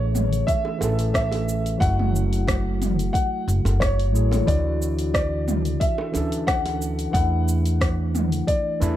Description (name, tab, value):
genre	sunset chillout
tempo	90 BPM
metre	4/4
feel	straight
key	A major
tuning	A4 = 443 Hz
part	dark grand piano	melody	0.0-9.0 s	C#5 to F#5	-27 LUFS	left 1 dB	ping-pong delay
part	overdriven tine electric piano	accompaniment	0.0-9.0 s	E3 to A4	-27 LUFS	right 1 dB	auto-pan
part	upright bass	bass	0.0-8.9 s	F#1 to E2	-23 LUFS	equal	none
part	deep house drum kit	drums	0.1-9.0 s	cabasa, hi-hat, rim click, toms	-28 LUFS	equal	none
part	electronic kick drum	drums	0.5-8.6 s	none	-24 LUFS	equal	none
part	bongos	percussion	0.6-6.8 s	none	-33 LUFS	right 2 dB	none
room	light reverb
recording	dark, warm production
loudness	-20 LUFS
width	side -12 dB against mid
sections	0.0-9.0 A section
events	none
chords	0.0 Amaj7; 1.8 F#m9; 4.5 Dmaj9; 7.1 E9sus4